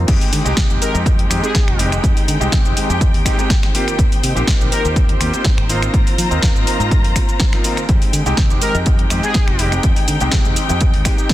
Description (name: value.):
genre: filtered disco house.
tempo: 123 BPM.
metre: 4/4.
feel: swing 53% on 16ths.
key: F minor.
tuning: A4 = 441 Hz.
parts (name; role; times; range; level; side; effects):
dark studio string section; sustained chords; 0.0-11.3 s; Ab3 to Bb5; -24 LUFS; left 1 dB; sidechain pumping, low-pass filter.
mellow electric guitar; riff; 0.0-11.3 s; Eb3 to G4; -27 LUFS; left 2 dB; sidechain pumping, low-pass filter.
fingered electric bass; bass; 0.0-11.0 s; F1 to F3; -21 LUFS; equal; sidechain pumping, low-pass filter.
clear baby grand piano; accompaniment; 0.1-11.3 s; Ab3 to G4; -24 LUFS; equal; phaser, sidechain pumping, low-pass filter.
electronic kick drum; drums; 0.1-11.3 s; none; -16 LUFS; equal; none.
house drum kit; drums; 0.1-11.3 s; cabasa, crash cymbal, finger snaps, hi-hat, snare drum; -22 LUFS; equal; sidechain pumping on hats, sidechain pumping on cymbals, sidechain pumping on perc.
analog synth brass; melody; 0.8-4.9, 8.6-9.6 s; Ab4 to Bb4; -25 LUFS; left 1 dB; chorus, sidechain pumping, low-pass filter, dub echo.
room: little or no reverb.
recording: dense, heavily limited modern master.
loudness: -13 LUFS.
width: side -14 dB against mid.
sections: 0.1-11.3 A section.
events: drop 0.1-11.3.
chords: 0.1 Fm9; 3.7 Eb6; 5.7 Ab69; 7.9 Fm9.